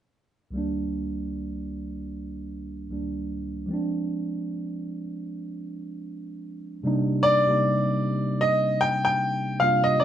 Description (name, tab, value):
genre	R&B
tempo	76 BPM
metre	4/4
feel	swing 60% on 16ths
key	C minor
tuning	A4 = 440 Hz
part	mellow tine electric piano	accompaniment	0.5-10.0 s	C2 to F4	-27 LUFS	right 1 dB	none
part	clear baby grand piano	melody	7.2-10.0 s	D5 to G5	-21 LUFS	equal	none
room	wet studio reverb, RT60 0.7 s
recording	band playing live in one room, nothing above 10.6 kHz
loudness	-24 LUFS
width	side -10 dB against mid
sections	0.5-6.8 A section; 6.8-10.0 B section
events	none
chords	0.5 Cm9; 3.7 Dm7b5; 6.8 Cm9